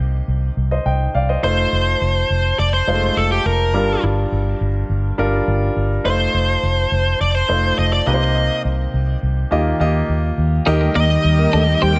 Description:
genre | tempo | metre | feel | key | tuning
pop | 104 BPM | 4/4 | straight | F mixolydian | A4 = 440 Hz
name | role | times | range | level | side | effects
clear baby grand piano | accompaniment | 0.0-12.0 s | G2 to G5 | -24 LUFS | equal | none
vintage muted fingered electric bass | bass | 0.0-12.0 s | F1 to Eb2 | -21 LUFS | equal | none
smooth overdriven lead guitar | melody | 1.4-12.0 s | G4 to G5 | -22 LUFS | equal | none
string machine, violas | sustained chords | 10.7-12.0 s | Eb3 to G4 | -26 LUFS | equal | ensemble chorus
twelve-string electric guitar | riff | 10.7-12.0 s | Bb3 to Eb4 | -26 LUFS | equal | subtle chorus
mellow synth brass | stabs | 10.8-11.9 s | G3 to Bb4 | -26 LUFS | equal | chorus
room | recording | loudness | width
light reverb, digital ambience | none | -18 LUFS | mono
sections
0.0-10.7 A section; 10.7-12.0 B section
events
none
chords
0.0 Cm7; 1.4 F7; 3.7 Gm7; 6.1 F7; 8.1 Cm7; 9.5 Ebadd9; 10.7 Eb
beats
0.28 0.86 | 1.44 2.01 2.59 3.17 | 3.74 4.32 4.90 5.47 | 6.05 6.63 7.21 7.78 | 8.36 8.94 9.51 10.09 | 10.67 11.24 11.82

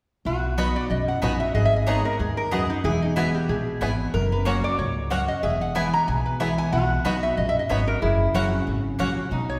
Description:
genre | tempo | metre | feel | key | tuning
bluegrass | 185 BPM | 4/4 | swing 55% on 8ths | B major | A4 = 440 Hz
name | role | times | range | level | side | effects
lap resonator guitar | second line | 0.3-9.6 s | D#4 to A#4 | -33 LUFS | equal | none
picked steel-string acoustic guitar | accompaniment | 0.3-9.6 s | E2 to A#4 | -30 LUFS | equal | none
upright bass | bass | 0.3-9.6 s | E1 to D#2 | -29 LUFS | equal | none
bluegrass banjo | melody | 0.6-9.1 s | B3 to G#4 | -36 LUFS | equal | none
mandolin | stabs | 0.6-9.1 s | A#3 to B5 | -34 LUFS | equal | none
lap resonator guitar | melody | 0.8-9.6 s | D#4 to A#5 | -29 LUFS | equal | none
room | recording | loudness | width
wet scoring stage reverb, RT60 1.7 s | recorded in a church or concert hall | -24 LUFS | mono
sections
0.3-9.6 A section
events
none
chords
0.3 B; 1.6 G#madd9; 2.8 E; 4.1 F#; 5.4 E; 6.7 B; 8.0 F#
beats
| 0.26 0.58 0.90 1.23 | 1.55 1.87 2.20 2.52 | 2.84 3.17 3.49 3.81 | 4.14 4.46 4.78 5.11 | 5.43 5.75 6.08 6.40 | 6.73 7.05 7.37 7.70 | 8.02 8.35 8.67 8.99 | 9.31

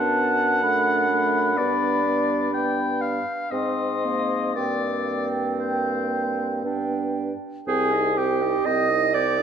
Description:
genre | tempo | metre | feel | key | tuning
classical, slow romantic movement for wind quintet | 56-65 BPM | 3/4 | rubato | C minor | A4 = 439 Hz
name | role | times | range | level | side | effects
mellow concert flute | melody | 0.0-9.4 s | G5 to Eb6 | -28 LUFS | left 5 dB | none
clear oboe | second line | 0.0-9.4 s | C5 to G5 | -26 LUFS | left 2 dB | none
bright clarinet | accompaniment | 0.0-9.4 s | Bb3 to Eb5 | -26 LUFS | right 7 dB | none
mellow French horn | accompaniment | 0.0-9.4 s | A3 to Eb4 | -31 LUFS | equal | none
dark bassoon | bass | 0.0-9.4 s | C2 to Ab2 | -28 LUFS | right 2 dB | none
room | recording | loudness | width
wet scoring stage reverb, RT60 1.8 s | none | -21 LUFS | side -8 dB against mid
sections
0.0-7.7 A section; 7.7-9.4 B section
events
none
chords
0.0 D/F#; 1.6 G; 3.5 Ab; 4.6 C5/G; 6.6 G; 7.7 Cm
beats
0.62 | 1.57 2.53 3.52 | 4.56 5.60 6.64 | 7.67 8.66

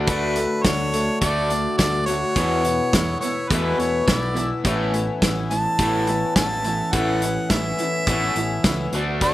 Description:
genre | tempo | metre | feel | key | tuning
folk rock and heartland rock | 105 BPM | 4/4 | straight | A major | A4 = 441 Hz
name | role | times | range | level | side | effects
picked twelve-string acoustic guitar | accompaniment | 0.0-9.3 s | E2 to F#4 | -25 LUFS | left 3 dB | none
raw garage guitar | riff | 0.0-9.3 s | E2 to D4 | -27 LUFS | right 2 dB | overdrive, slapback echo
fingered electric bass | bass | 0.0-9.3 s | A1 to E2 | -27 LUFS | equal | none
clear harmonica | melody | 0.1-9.3 s | B4 to A5 | -25 LUFS | right 1 dB | slapback echo
loose indie drum kit | drums | 0.1-9.3 s | hi-hat, kick drum, snare drum | -23 LUFS | equal | none
room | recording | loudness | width
little or no reverb | none | -19 LUFS | side -15 dB against mid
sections
0.0-9.3 A section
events
none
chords
0.0 D; 2.4 Esus4; 4.6 Aadd9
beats
| 0.08 0.65 1.22 1.79 | 2.36 2.93 3.50 4.07 | 4.64 5.22 5.79 6.36 | 6.93 7.50 8.07 8.65 | 9.22

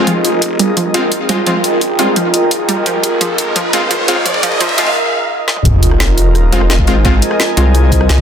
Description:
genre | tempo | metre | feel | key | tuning
dark technical drum and bass | 172 BPM | 4/4 | straight | F minor | A4 = 440 Hz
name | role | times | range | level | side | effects
deep dark ambient pad | sustained chords | 0.0-8.2 s | F4 to G5 | -19 LUFS | right 2 dB | chorus, built-in reverb, sidechain pumping
orchestra-hit-like synth stab | stabs | 0.0-7.7 s | Ab3 to F4 | -17 LUFS | left 1 dB | built-in reverb, digital delay
phased detuned saw bass | bass | 0.0-8.2 s | Eb1 to F2 | -17 LUFS | equal | phaser, overdrive, sidechain pumping, high-pass filter
airy breathy pad | texture | 0.0-8.2 s | F4 to Ab5 | -20 LUFS | equal | chorus, sidechain pumping
analog pluck | arpeggios | 0.1-4.8 s | F3 to G3 | -20 LUFS | right 2 dB | chorus, sidechain pumping, digital delay
drum and bass drum kit | drums | 0.1-8.2 s | hi-hat, rim click, snare drum, toms | -17 LUFS | equal | overdrive, small room ambience
electronic kick drum | drums | 0.1-8.2 s | none | -18 LUFS | equal | overdrive, high-pass filter on kick, small room ambience
riser and sub drop | sound effects | 1.8-7.0 s | none | -18 LUFS | equal | none
pulsing pluck wobble bass | bass | 7.6-8.1 s | C2 | -10 LUFS | equal | chorus
room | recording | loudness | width
light reverb | dense, heavily limited modern master, high-pass filter | -10 LUFS | side -8 dB against mid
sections
0.0-5.7 A section; 5.7-8.2 B section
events
build-up 0.0-5.7; filter sweep on synth arpeggio sound 0.0-5.7; filter sweep 0.0-5.7; drum fill 0.1-5.0, 5.5; riser 1.8-5.0; break 5.0-5.7; drop 5.7-8.2; impact 5.7-7.0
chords
0.0 Fm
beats
| 0.07 0.42 0.77 1.12 | 1.47 1.81 2.16 2.51 | 2.86 3.21 3.56 3.91 | 4.26 4.61 4.96 5.30 | 5.65 6.00 6.35 6.70 | 7.05 7.40 7.75 8.09

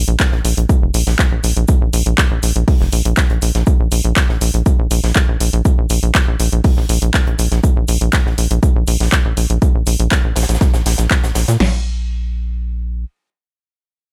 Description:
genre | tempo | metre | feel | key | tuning
melodic techno | 121 BPM | 4/4 | straight | unclear | A4 = 440 Hz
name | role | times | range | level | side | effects
tight sequencer bass | bass | 0.0-13.1 s | F1 to Bb2 | -18 LUFS | equal | sidechain pumping
house drum kit | drums | 0.1-11.6 s | handclaps, hi-hat | -22 LUFS | equal | studio ambience
crisp fusion drum kit | drums | 0.2-11.6 s | hi-hat, shaker, snare drum | -31 LUFS | equal | sidechain pumping on hats, high-pass filter on hats, studio ambience, high-pass filter on snare, sidechain pumping on perc, high-pass filter on perc, high-pass filter on room
punchy analog drum machine | drums | 0.2-11.7 s | crash cymbal, kick drum, snare drum | -16 LUFS | equal | studio ambience
room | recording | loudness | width
studio reverb | none | -15 LUFS | mono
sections
0.0-11.6 A section; 11.6-14.1 B section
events
drop 0.0-11.6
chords
none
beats
0.20 0.69 1.19 | 1.69 2.18 2.68 3.17 | 3.67 4.17 4.66 5.16 | 5.65 6.15 6.64 7.14 | 7.64 8.13 8.63 9.12 | 9.62 10.12 10.61 11.11 | 11.60 12.10 12.60

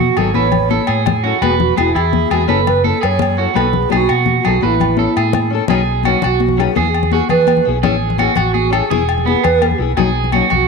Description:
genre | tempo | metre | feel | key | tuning
highlife guitar band | 112 BPM (dotted quarters) | 12/8 | straight | E major | A4 = 440 Hz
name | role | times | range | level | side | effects
mellow hollow alto flute | melody | 0.0-10.7 s | E4 to C#5 | -19 LUFS | right 4 dB | none
electric guitar at the edge of break-up | arpeggios | 0.0-10.7 s | B3 to B4 | -18 LUFS | right 10 dB | slapback echo
fingered electric bass | bass | 0.0-10.7 s | E1 to E3 | -18 LUFS | right 1 dB | none
fingerpicked steel-string acoustic guitar | accompaniment | 0.2-10.5 s | F#3 to B4 | -21 LUFS | left 9 dB | none
agogo bells | percussion | 0.2-10.7 s | none | -23 LUFS | left 12 dB | none
congas | percussion | 0.2-10.6 s | none | -21 LUFS | left 9 dB | none
room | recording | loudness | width
moderate echo chamber reverb, RT60 2.5 s | 1960s-style stereo with parts hard left and right | -12 LUFS | side -4 dB against mid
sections
0.0-5.7 A section; 5.7-10.7 B section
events
none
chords
0.4 A; 1.4 Eadd9; 2.5 F#m7; 3.6 B7; 4.6 A; 5.7 Badd9; 6.8 E; 7.8 Amaj7; 8.9 E; 10.0 Badd9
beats
0.35 0.89 | 1.42 1.96 2.49 3.02 | 3.56 4.09 4.63 5.16 | 5.70 6.23 6.76 7.30 | 7.83 8.37 8.90 9.44 | 9.97 10.51

